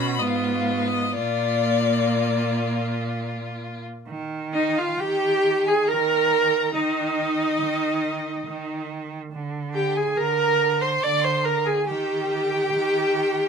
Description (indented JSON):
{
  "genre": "classical, slow romantic movement for string quartet",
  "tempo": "59-72 BPM",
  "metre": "3/4",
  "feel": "rubato",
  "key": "Eb major",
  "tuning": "A4 = 440 Hz",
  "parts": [
    { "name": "rich violin", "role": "melody", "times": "0.0-13.5 s", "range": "D5 to D6", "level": "-29 LUFS", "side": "left 9 dB", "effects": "none" },
    { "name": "rich violin", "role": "second line", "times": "0.0-13.5 s", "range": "F4 to D6", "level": "-30 LUFS", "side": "left 4 dB", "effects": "none" },
    { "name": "rich viola", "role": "accompaniment", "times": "0.0-13.5 s", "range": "Bb3 to D5", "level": "-23 LUFS", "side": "right 2 dB", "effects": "none" },
    { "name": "rich cello", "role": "bass", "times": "0.0-13.5 s", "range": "Ab2 to Eb3", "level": "-29 LUFS", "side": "right 4 dB", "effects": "none" }
  ],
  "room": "moderate studio reverb, RT60 0.7 s",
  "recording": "minimal, uncompressed stereo recording",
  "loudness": "-20 LUFS",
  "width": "side -6 dB against mid",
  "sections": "0.0-4.1 A section; 4.1-13.5 B section",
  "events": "none",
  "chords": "0.2 Fdim/Ab; 1.2 Bb; 4.1 Eb5; 6.7 N.C.; 9.3 Bb9/D; 11.9 Eb"
}